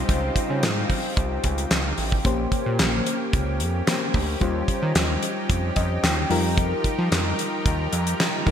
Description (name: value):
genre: early-eighties boogie funk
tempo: 111 BPM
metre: 4/4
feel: straight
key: Bb dorian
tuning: A4 = 440 Hz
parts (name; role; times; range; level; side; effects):
- mellow FM electric piano; accompaniment; 0.0-8.5 s; G3 to G5; -28 LUFS; left 3 dB; chorus
- lush unison pad; sustained chords; 0.0-8.5 s; Db3 to Bb4; -30 LUFS; right 1 dB; chorus
- fat analog bass; bass; 0.0-8.5 s; A1 to F3; -25 LUFS; right 1 dB; none
- damped 70s drum kit; drums; 0.1-8.5 s; handclaps, hi-hat, kick drum, snare drum; -24 LUFS; equal; gated reverb
room: moderate lush hall reverb, RT60 2.9 s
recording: bright 1980s-style digital production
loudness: -21 LUFS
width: side -8 dB against mid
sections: 0.0-8.5 A section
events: FM electric piano fill 5.5-6.6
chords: 0.0 Dbmaj9#11; 2.3 Bbm69; 4.4 Eb13; 6.3 F9sus4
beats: | 0.09 0.63 1.17 1.71 | 2.25 2.79 3.33 3.87 | 4.41 4.96 5.50 6.04 | 6.58 7.12 7.66 8.20